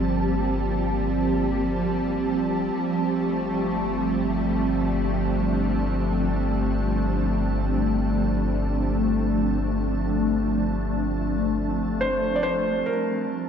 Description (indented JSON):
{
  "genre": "ambient",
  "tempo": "free time",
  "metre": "none",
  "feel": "none",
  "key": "unclear",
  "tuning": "A4 = 439 Hz",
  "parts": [
    { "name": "glassy FM pad", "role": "sustained chords", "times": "0.0-13.5 s", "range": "F3 to A5", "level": "-24 LUFS", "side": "equal", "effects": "ensemble chorus, built-in reverb" },
    { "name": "warm sub bass", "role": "bass", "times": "0.0-13.5 s", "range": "G1", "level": "-28 LUFS", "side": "equal", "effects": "none" },
    { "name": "bowed-like drone", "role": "drone", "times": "0.0-13.0 s", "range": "G3", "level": "-34 LUFS", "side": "right 1 dB", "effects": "built-in reverb" },
    { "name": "felt-muted upright piano", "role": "melody", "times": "12.0-13.5 s", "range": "Bb4 to D5", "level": "-24 LUFS", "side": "right 1 dB", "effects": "none" }
  ],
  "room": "wet concert hall reverb, RT60 2.4 s",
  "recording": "dark, warm production",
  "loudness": "-22 LUFS",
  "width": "side -7 dB against mid",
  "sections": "0.0-12.9 A section",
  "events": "fade-in on synth drone 0.0-12.9",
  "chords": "0.0 Gm11; 2.7 Dm7/G; 12.9 Ebadd9/G (rootless)"
}